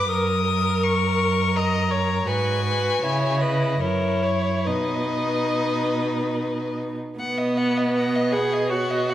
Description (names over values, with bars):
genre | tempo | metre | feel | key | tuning
classical, slow romantic movement for string quartet | 69-85 BPM | 3/4 | rubato | B major | A4 = 440 Hz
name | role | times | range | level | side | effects
rich violin | melody | 0.0-9.1 s | B4 to D#6 | -26 LUFS | left 6 dB | none
rich violin | second line | 0.0-9.1 s | D#4 to F#5 | -28 LUFS | left 2 dB | none
clear viola | accompaniment | 0.0-9.1 s | B3 to D#5 | -25 LUFS | right 1 dB | none
clear cello | bass | 0.0-9.1 s | F#2 to C#3 | -26 LUFS | right 3 dB | none
room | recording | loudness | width
wet recital hall reverb, RT60 1.7 s | none | -20 LUFS | side -12 dB against mid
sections
0.0-7.2 A section; 7.2-9.1 A section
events
none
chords
0.1 F#; 2.3 G#m7; 3.0 C#m7; 3.8 F#7; 4.7 B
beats
| 0.08 0.83 1.55 | 2.27 3.03 3.81 | 4.66 5.51 6.35 | 7.19 7.95 8.70